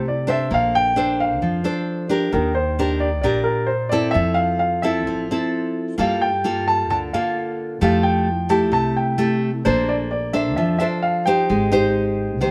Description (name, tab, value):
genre	bossa nova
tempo	131 BPM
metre	4/4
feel	straight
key	F major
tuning	A4 = 441 Hz
part	warm baby grand piano	melody	0.0-12.5 s	Bb4 to A5	-24 LUFS	equal	none
part	nylon-string guitar	accompaniment	0.0-12.5 s	Bb2 to C5	-23 LUFS	equal	none
part	upright bass	bass	0.5-12.5 s	Ab1 to G2	-28 LUFS	equal	none
room	moderate stone room reverb, RT60 1.1 s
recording	band playing live in one room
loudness	-20 LUFS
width	mono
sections	0.0-12.5 A section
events	none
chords	0.0 Fmaj7 (rootless); 0.5 Bbmaj9; 2.3 Ebmaj7; 4.2 Fmaj7; 6.0 Gm9; 7.8 Fmaj9; 9.7 Bbmaj9; 11.5 Abmaj7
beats	0.05 | 0.51 0.96 1.42 1.88 | 2.33 2.79 3.25 3.71 | 4.16 4.62 5.08 5.54 | 5.99 6.45 6.91 7.37 | 7.82 8.28 8.74 9.20 | 9.66 10.11 10.57 11.03 | 11.49 11.95 12.40